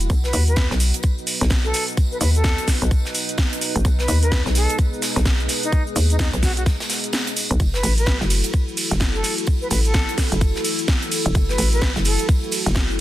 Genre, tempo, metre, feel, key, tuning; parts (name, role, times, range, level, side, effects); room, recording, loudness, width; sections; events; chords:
bass house; 128 BPM; 4/4; swing 61% on 16ths; A4 = 441 Hz
dark analog pad; sustained chords; 0.0-13.0 s; B3 to D#5; -31 LUFS; left 1 dB; chorus, sidechain pumping
hollow knocking FM bass; bass; 0.0-13.0 s; E1 to D#2; -20 LUFS; equal; tube saturation, sidechain pumping
house drum kit; drums; 0.0-13.0 s; cabasa, hi-hat, ride cymbal, snare drum; -24 LUFS; right 1 dB
warbly tape-like pad; texture; 0.0-13.0 s; D#4 to F#5; -33 LUFS; right 1 dB; chorus, built-in reverb, phaser, sidechain pumping
electronic kick drum; drums; 0.1-12.9 s; -19 LUFS; equal
tight metal drum kit; drums; 0.1-12.9 s; hi-hat, snare drum, tambourine; -31 LUFS; right 2 dB; sidechain pumping on hats, high-pass filter on hats, high-pass filter on snare, sidechain pumping on perc, high-pass filter on perc, high-pass filter on room
concert flute; melody; 0.2-12.3 s; D#4 to B4; -28 LUFS; equal; ping-pong delay
little or no reverb; dense, heavily limited modern master; -17 LUFS; side -14 dB against mid
0.0-13.0 A section
kick drops out 7.1-7.6
0.1 B; 7.6 F#m7